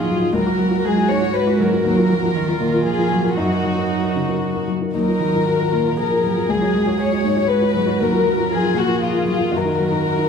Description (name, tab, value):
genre	neoclassical piano and strings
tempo	118 BPM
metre	3/4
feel	rubato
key	Eb minor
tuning	A4 = 441 Hz
part	warm chamber violin section	melody	0.0-10.3 s	F4 to Db5	-21 LUFS	left 4 dB	none
part	dark cello	second line	0.0-10.3 s	Eb3 to Ab3	-22 LUFS	right 5 dB	none
part	felt-muted upright piano	accompaniment	0.0-10.3 s	Db2 to Db5	-22 LUFS	left 3 dB	none
part	warm viola	accompaniment	0.0-10.3 s	Eb4 to Ab4	-26 LUFS	right 4 dB	none
room	wet concert hall reverb, RT60 2.5 s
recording	dark, warm production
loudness	-16 LUFS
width	side -6 dB against mid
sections	0.0-10.3 A section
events	none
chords	0.3 Dbsus4 (rootless); 1.9 Ebmadd9; 3.4 Gb6; 4.9 Ebmadd9; 6.5 Dbsus4; 8.0 Ebmadd9 (rootless); 9.5 Gb6